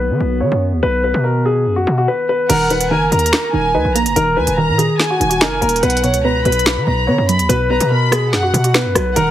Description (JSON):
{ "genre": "hip hop, drill", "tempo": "144 BPM", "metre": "4/4", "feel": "half-time", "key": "unclear", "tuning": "A4 = 442 Hz", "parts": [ { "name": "dark grand piano", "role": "melody", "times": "0.0-9.3 s", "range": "F#4 to Db5", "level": "-17 LUFS", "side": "left 1 dB", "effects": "low-pass filter" }, { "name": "warbly tape-like pad", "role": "sustained chords", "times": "0.0-2.5 s", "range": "Eb3 to Gb4", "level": "-26 LUFS", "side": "left 1 dB", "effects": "chorus, built-in reverb, low-pass filter" }, { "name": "distorted 808-style bass", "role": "bass", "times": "0.0-9.3 s", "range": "Eb1 to D#3", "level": "-19 LUFS", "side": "equal", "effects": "distortion" }, { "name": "warm studio violin section", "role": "second line", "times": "2.5-9.3 s", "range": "Gb5 to B5", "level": "-21 LUFS", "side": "equal", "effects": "digital delay" }, { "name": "warbly dusty pluck", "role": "accompaniment", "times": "2.5-9.3 s", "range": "B2 to Eb4", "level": "-20 LUFS", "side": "right 2 dB", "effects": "chorus, low-pass filter" }, { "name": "drill drum kit", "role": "drums", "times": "2.5-9.3 s", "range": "crash cymbal, finger snaps, hi-hat, rim click, snare drum", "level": "-18 LUFS", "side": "right 1 dB", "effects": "none" } ], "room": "light reverb, digital ambience", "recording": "heavily compressed radio sound", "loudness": "-13 LUFS", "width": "side -12 dB against mid", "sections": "0.0-2.5 A section; 2.5-9.3 B section", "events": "filter sweep 0.0-2.5", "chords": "0.0 B; 2.5 Ebm; 5.8 B5" }